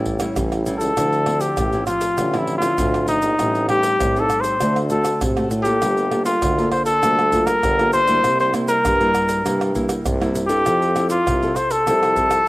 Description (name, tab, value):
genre	samba and choro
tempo	99 BPM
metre	4/4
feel	straight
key	unclear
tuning	A4 = 440 Hz
part	mellow trumpet	melody	0.0-12.5 s	Eb4 to C5	-18 LUFS	left 1 dB	cassette tape
part	nylon-string guitar	accompaniment	0.0-12.5 s	G2 to A4	-24 LUFS	equal	cassette tape
part	clear tuba	bass	0.0-12.4 s	G1 to C3	-23 LUFS	equal	none
part	surdo, pandeiro, tube shaker and tamborim	percussion	0.1-12.5 s	none	-27 LUFS	right 2 dB	none
room	light reverb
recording	home recording on cassette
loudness	-16 LUFS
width	side -18 dB against mid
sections	0.0-12.5 A section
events	none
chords	0.0 A7; 1.0 Dm9; 3.4 Am7b5; 4.6 D7; 5.8 Gm9; 8.2 C7; 10.7 Fmaj7